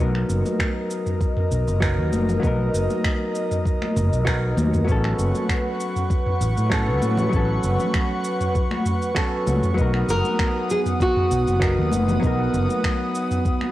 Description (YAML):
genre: sunset chillout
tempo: 98 BPM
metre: 4/4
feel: straight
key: B major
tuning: A4 = 439 Hz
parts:
  - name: hollow-body jazz guitar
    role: accompaniment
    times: 0.0-13.7 s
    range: F#3 to A#4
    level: -26 LUFS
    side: equal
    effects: auto-pan, cassette tape, tape echo
  - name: airy breathy pad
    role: sustained chords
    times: 0.0-13.7 s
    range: B3 to D#6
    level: -27 LUFS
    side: equal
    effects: chorus, cassette tape
  - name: mellow fretless electric bass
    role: bass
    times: 0.0-12.7 s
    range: F#1 to A2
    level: -22 LUFS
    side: equal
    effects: transformer saturation
  - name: smooth R&B drum kit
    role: drums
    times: 0.1-13.7 s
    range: cabasa, finger snaps, toms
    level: -28 LUFS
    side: equal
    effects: cassette tape
  - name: congas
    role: percussion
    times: 0.5-13.7 s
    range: none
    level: -29 LUFS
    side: left 2 dB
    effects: none
  - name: electronic kick drum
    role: drums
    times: 0.6-13.6 s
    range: none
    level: -23 LUFS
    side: equal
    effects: cassette tape
  - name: nylon-string guitar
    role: melody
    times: 10.1-11.9 s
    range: F#4 to A#4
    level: -24 LUFS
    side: equal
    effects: tape echo
room: light reverb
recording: home recording on cassette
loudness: -19 LUFS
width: side -15 dB against mid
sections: 0.0-13.7 A section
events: none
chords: 0.0 Bmaj7; 4.9 A69; 9.8 Bmaj7